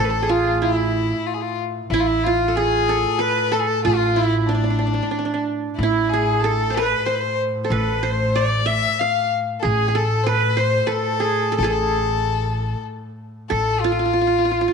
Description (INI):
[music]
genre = arabic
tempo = 93 BPM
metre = 3/4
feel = straight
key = A maqam nahawand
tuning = A4 = 440 Hz
[part]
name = qanun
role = melody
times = 0.0-14.7 s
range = D4 to F5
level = -21 LUFS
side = right 8 dB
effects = none
[part]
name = clear violin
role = second line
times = 0.0-14.7 s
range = D4 to F5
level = -22 LUFS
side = left 11 dB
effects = none
[part]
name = upright bass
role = bass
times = 0.0-14.7 s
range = A1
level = -23 LUFS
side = equal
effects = none
[part]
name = rich double bass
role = drone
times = 0.0-13.6 s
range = A2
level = -31 LUFS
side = left 1 dB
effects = none
[sound]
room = moderate echo chamber reverb, RT60 1.6 s, small room ambience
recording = 1960s-style stereo with parts hard left and right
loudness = -18 LUFS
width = side -6 dB against mid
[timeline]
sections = 0.0-13.5 A section; 13.5-14.7 B section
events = none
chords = none